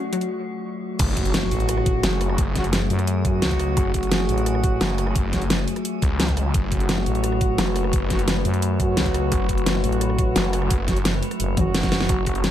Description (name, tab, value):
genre	dark technical drum and bass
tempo	173 BPM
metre	4/4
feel	straight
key	F# minor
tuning	A4 = 440 Hz
part	metallic inharmonic drone	sustained chords	0.0-12.5 s	F#3 to B4	-28 LUFS	left 4 dB	chorus, built-in reverb, sidechain pumping
part	warm brass ensemble	stabs	0.0-12.5 s	F#3 to F#4	-28 LUFS	right 2 dB	low-pass filter, dub echo
part	analog pluck	arpeggios	0.1-0.2, 12.1-12.5 s	F#3 to F#4	-32 LUFS	left 1 dB	chorus, sidechain pumping, dub echo
part	dubstep drum kit	drums	0.1-12.5 s	crash cymbal, hi-hat, rim click, snare drum, toms	-24 LUFS	equal	none
part	snarling distorted saw bass	bass	1.0-12.5 s	F#1 to C#2	-25 LUFS	equal	distortion, tube saturation
part	electronic kick drum	drums	1.0-12.3 s	none	-24 LUFS	equal	none
part	impact	sound effects	1.0-2.4 s	none	-31 LUFS	equal	none
part	growling FM bass	bass	1.5-4.8, 7.1-12.1 s	F#1 to F#2	-23 LUFS	equal	none
room	light reverb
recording	none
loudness	-19 LUFS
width	side -11 dB against mid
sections	1.0-12.5 A section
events	break 0.3-1.0; drop 1.0-12.5; impact 1.0-2.4; drum fill 11.6-12.1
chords	0.0 F#m; 1.0 F#madd9